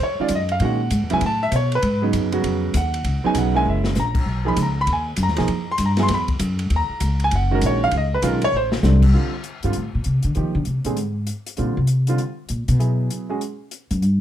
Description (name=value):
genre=jazz piano trio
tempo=197 BPM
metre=4/4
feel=swing 63% on 8ths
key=F# major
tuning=A4 = 441 Hz
part: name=clear concert grand piano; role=melody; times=0.0-13.4 s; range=C#3 to C6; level=-22 LUFS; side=right 2 dB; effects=none
part: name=upright bass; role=bass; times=0.0-14.2 s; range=F#1 to Eb3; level=-20 LUFS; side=equal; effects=none
part: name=open jazz drum kit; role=drums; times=0.3-14.1 s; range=crash cymbal, hi-hat, kick drum, ride cymbal, snare drum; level=-29 LUFS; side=left 2 dB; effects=none
room=light reverb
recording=dark, warm production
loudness=-18 LUFS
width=side -11 dB against mid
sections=0.0-9.1 A section; 9.1-14.2 A section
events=grand piano solo 0.0-9.1; drum fill 3.7-4.0, 8.5-8.8; upright bass solo 9.1-14.2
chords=0.0 F#maj7(no3); 0.6 A#m7b5; 1.2 Asus2; 1.8 G#m7; 3.0 C#7sus2; 3.7 F#7; 4.3 Bmaj9; 5.5 Fsus2; 6.1 Esus2; 6.7 D#m7; 7.9 C#9; 8.5 Amadd11; 9.1 Bbmaj9; 10.4 F7sus2; 11.0 N.C.; 11.6 Bb69; 12.8 Dbm7 (rootless); 13.4 N.C.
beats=0.00 0.30 | 0.61 0.91 1.22 1.52 | 1.83 2.13 2.44 2.74 | 3.05 3.35 3.66 3.96 | 4.27 4.57 4.88 5.18 | 5.49 5.79 6.10 6.40 | 6.71 7.01 7.32 7.62 | 7.92 8.23 8.53 8.84 | 9.14 9.45 9.75 10.06 | 10.36 10.67 10.97 11.28 | 11.58 11.89 12.19 12.50 | 12.80 13.11 13.41 13.72 | 14.02